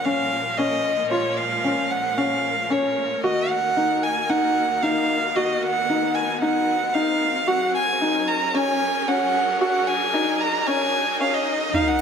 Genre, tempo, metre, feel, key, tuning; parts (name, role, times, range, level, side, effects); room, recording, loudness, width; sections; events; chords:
piano and strings electronica; 113 BPM; 4/4; straight; A4 = 440 Hz
rich violin; melody; 0.0-12.0 s; Db5 to Bb5; -22 LUFS; right 2 dB
clear studio string section; sustained chords; 0.0-12.0 s; Eb2 to Bb4; -31 LUFS; equal
riser and sub drop; sound effects; 0.0-12.0 s; -32 LUFS; equal
felt-muted upright piano; riff; 0.1-12.0 s; Db4 to Gb4; -24 LUFS; left 2 dB
wet echo chamber reverb, RT60 2.7 s; high-pass filter; -19 LUFS; side -7 dB against mid
0.0-11.7 A section
build-up 0.0-11.7; riser 0.0-11.7; impact 11.7
0.0 Bbm; 3.2 Ebm; 7.5 Gbadd9